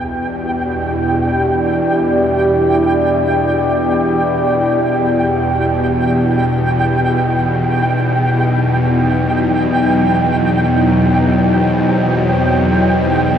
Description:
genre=ambient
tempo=free time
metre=none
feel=none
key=E minor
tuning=A4 = 441 Hz
part: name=deep dark ambient pad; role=sustained chords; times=0.3-13.4 s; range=F#3 to D5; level=-17 LUFS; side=equal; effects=chorus, built-in reverb
part: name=bowed-like drone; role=drone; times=0.0-13.4 s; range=E2 to B2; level=-16 LUFS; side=left 1 dB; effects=built-in reverb
part: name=flickering grainy texture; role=texture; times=0.0-13.4 s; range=G5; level=-19 LUFS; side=right 2 dB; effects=built-in reverb
room=wet cathedral reverb, RT60 6.4 s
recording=worn, warbling old tape, cassette tape, warbly pitch drift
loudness=-12 LUFS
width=side -8 dB against mid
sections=0.0-13.4 A section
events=none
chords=0.0 Em; 6.6 Cmadd9

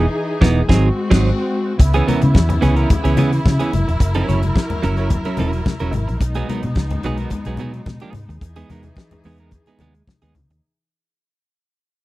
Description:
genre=disco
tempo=109 BPM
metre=4/4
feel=straight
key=unclear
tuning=A4 = 438 Hz
part: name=clean electric guitar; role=accompaniment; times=0.0-10.5 s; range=E3 to C#5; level=-21 LUFS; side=right 4 dB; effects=none
part: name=rich studio string section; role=sustained chords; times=0.0-10.6 s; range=C#3 to A#4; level=-24 LUFS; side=left 1 dB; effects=none
part: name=vintage muted fingered electric bass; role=bass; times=0.0-10.6 s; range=E1 to C#3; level=-18 LUFS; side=equal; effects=none
part: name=warm soul drum kit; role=drums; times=0.4-10.6 s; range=crash cymbal, hi-hat, kick drum, snare drum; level=-16 LUFS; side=equal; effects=none
part: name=congas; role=percussion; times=2.1-10.5 s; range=none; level=-25 LUFS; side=left 3 dB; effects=none
room=little or no reverb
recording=none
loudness=-15 LUFS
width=side -18 dB against mid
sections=0.0-1.8 A section; 1.8-10.6 B section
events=band accent 0.0-1.8; fade-out 1.8-10.6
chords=0.0 Emaj7; 0.7 G#7; 1.8 C#m7; 3.7 F#7; 6.2 B6; 8.4 Emaj7

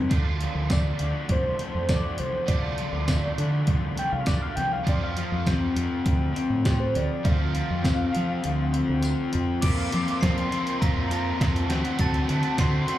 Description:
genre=indie rock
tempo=101 BPM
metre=4/4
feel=straight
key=unclear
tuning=A4 = 441 Hz
part: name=overdriven semi-hollow guitar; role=riff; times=0.0-13.0 s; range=F2 to G4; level=-33 LUFS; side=right 8 dB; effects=ensemble chorus, slapback echo
part: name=raw garage guitar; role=riff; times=0.0-13.0 s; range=D3 to G4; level=-29 LUFS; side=left 4 dB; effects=overdrive, slapback echo
part: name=growling fingered electric bass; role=bass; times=0.0-12.8 s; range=C2 to F3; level=-27 LUFS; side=right 1 dB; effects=overdrive
part: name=detuned 8-bit digital drum machine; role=drums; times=0.1-13.0 s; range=crash cymbal, hi-hat, kick drum, snare drum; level=-26 LUFS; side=equal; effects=overdrive
part: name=overdriven synth lead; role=melody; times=0.7-13.0 s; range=G4 to D6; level=-31 LUFS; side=equal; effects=chorus, slapback echo, tape echo
part: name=tambourine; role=percussion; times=0.7-9.2 s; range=none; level=-40 LUFS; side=left 2 dB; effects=none
part: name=glockenspiel with hard plastic mallets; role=second line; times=9.6-13.0 s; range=A6 to D7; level=-38 LUFS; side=equal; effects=slapback echo
room=light reverb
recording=live gig heard through the venue's PA, club reverb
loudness=-22 LUFS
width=side -13 dB against mid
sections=0.0-9.6 A section; 9.6-13.0 B section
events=analog synth lead solo 0.0-9.6; kick and snare drop out 8.4-9.6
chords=0.1 Dm; 4.9 F; 9.6 Fsus4; 11.7 D7

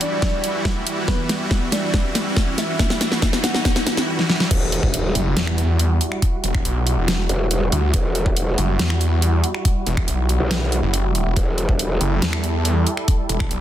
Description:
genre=heavy wobble dubstep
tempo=140 BPM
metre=4/4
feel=half-time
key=E minor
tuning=A4 = 439 Hz
part: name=warm concert grand piano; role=melody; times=0.0-4.0 s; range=B3 to F#5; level=-29 LUFS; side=equal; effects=dub echo
part: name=supersaw pad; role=sustained chords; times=0.0-13.6 s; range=E3 to A4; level=-26 LUFS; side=right 1 dB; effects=sidechain pumping, low-pass filter
part: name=dubstep drum kit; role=drums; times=0.0-13.6 s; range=crash cymbal, finger snaps, hi-hat, snare drum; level=-23 LUFS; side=equal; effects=small room ambience, soft clipping on snare
part: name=riser and impact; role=sound effects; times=0.4-6.2 s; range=none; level=-30 LUFS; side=equal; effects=none
part: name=electronic kick drum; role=drums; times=0.2-13.5 s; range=none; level=-20 LUFS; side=equal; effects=small room ambience
part: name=growl bass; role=bass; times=4.5-12.0 s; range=E1 to B1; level=-21 LUFS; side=equal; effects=chorus, overdrive
part: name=snarling distorted saw bass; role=bass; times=5.2-13.6 s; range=E1 to E2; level=-19 LUFS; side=equal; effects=distortion, overdrive
room=light reverb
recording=dense, heavily limited modern master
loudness=-17 LUFS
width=side -12 dB against mid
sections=0.0-4.5 A section; 4.5-13.6 B section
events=build-up 0.0-4.5; drum fill 0.0-4.1, 4.2-4.5; filter sweep on grand piano 0.0-4.5; riser 0.4-4.1; drop 4.5-13.6; impact 4.5-6.2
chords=0.0 Emadd9

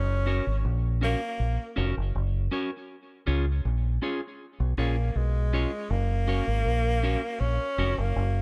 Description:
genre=roots reggae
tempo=80 BPM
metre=4/4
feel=straight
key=F# major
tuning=A4 = 440 Hz
part: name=clear tenor saxophone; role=melody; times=0.0-8.4 s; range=G#3 to C#4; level=-34 LUFS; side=equal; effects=tape echo
part: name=deep dub fingered electric bass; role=bass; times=0.0-8.4 s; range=E#1 to C#2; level=-28 LUFS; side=equal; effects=none
part: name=clean electric guitar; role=accompaniment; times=0.3-8.0 s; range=C#4 to C#5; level=-36 LUFS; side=equal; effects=tape echo
room=light reverb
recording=none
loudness=-28 LUFS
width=mono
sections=0.0-8.4 A section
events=none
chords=0.0 F#; 2.9 C#; 5.9 F#

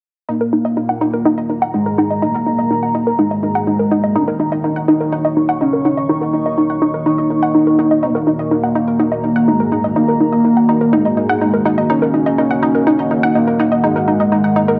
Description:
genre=techno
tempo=124 BPM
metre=4/4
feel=straight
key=Eb minor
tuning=A4 = 440 Hz
part: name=fat analog lead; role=melody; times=0.3-14.8 s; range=Ab3 to Eb4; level=-19 LUFS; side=equal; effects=lush chorus, tape echo
part: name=deep dark ambient pad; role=sustained chords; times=1.1-14.8 s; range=Eb3 to Db6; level=-23 LUFS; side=equal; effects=chorus, built-in reverb
part: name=analog pluck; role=arpeggios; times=0.3-14.8 s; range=Eb4 to Gb5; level=-19 LUFS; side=equal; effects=chorus, dub echo
room=wet echo chamber reverb, RT60 1.6 s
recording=echo-heavy mix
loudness=-15 LUFS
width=mono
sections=0.3-14.8 A section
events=filter sweep on synth arpeggio sound 0.3-14.8; filter sweep on analog synth lead 0.3-14.8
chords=0.3 Ebm

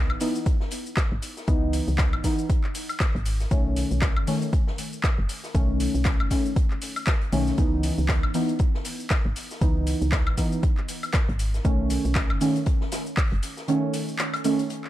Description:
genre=deep house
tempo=118 BPM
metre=4/4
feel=swing 57% on 16ths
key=C# minor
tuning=A4 = 440 Hz
part: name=deep mellow chord stab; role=stabs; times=0.0-14.6 s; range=D#3 to D#4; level=-27 LUFS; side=equal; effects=chorus, cassette tape, sidechain pumping, analog delay
part: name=woody FM bass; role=bass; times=0.0-13.4 s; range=F#1 to C#2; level=-26 LUFS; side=equal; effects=sidechain pumping
part: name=deep house drum kit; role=drums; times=0.1-14.9 s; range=handclaps, hi-hat, shaker, woodblock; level=-31 LUFS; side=left 1 dB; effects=overdrive, small room reverb
part: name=open jazz drum kit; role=drums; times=0.2-14.8 s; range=hi-hat, snare drum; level=-38 LUFS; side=left 2 dB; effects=sidechain pumping on hats, high-pass filter on hats, small room reverb, high-pass filter on snare, high-pass filter on room
part: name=electronic kick drum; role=drums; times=0.5-13.3 s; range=none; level=-23 LUFS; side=equal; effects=overdrive, small room reverb
room=small room reverb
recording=dark, warm production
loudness=-22 LUFS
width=side -14 dB against mid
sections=0.0-14.9 A section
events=none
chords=0.0 C#m9; 3.5 B7; 7.6 C#m9; 11.6 B7

